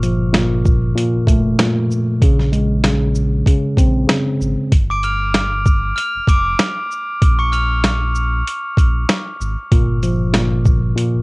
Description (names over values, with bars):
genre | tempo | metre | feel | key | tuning
hip hop, boom-bap hip-hop | 96 BPM | 4/4 | swing 57% on 16ths | G minor | A4 = 440 Hz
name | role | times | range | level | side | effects
mellow tine electric piano | accompaniment | 0.0-4.7, 9.7-11.2 s | Bb2 to C4 | -16 LUFS | equal | medium stereo tremolo, cassette tape
sub bass with octave | bass | 0.0-11.2 s | F1 to Bb1 | -20 LUFS | equal | transformer saturation
boom bap sampler-style drum kit | drums | 0.0-11.1 s | hi-hat, kick drum, shaker, snare drum | -14 LUFS | equal | cassette tape
glockenspiel with soft plastic mallets | melody | 4.9-8.6 s | Db6 to F7 | -22 LUFS | equal | cassette tape
room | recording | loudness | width
digital ambience | home recording on cassette | -14 LUFS | side -26 dB against mid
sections
0.0-11.2 A section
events
none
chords
0.0 Gm9; 2.2 Bbm9; 4.7 G5; 7.2 Bb7(no3); 9.7 Gm7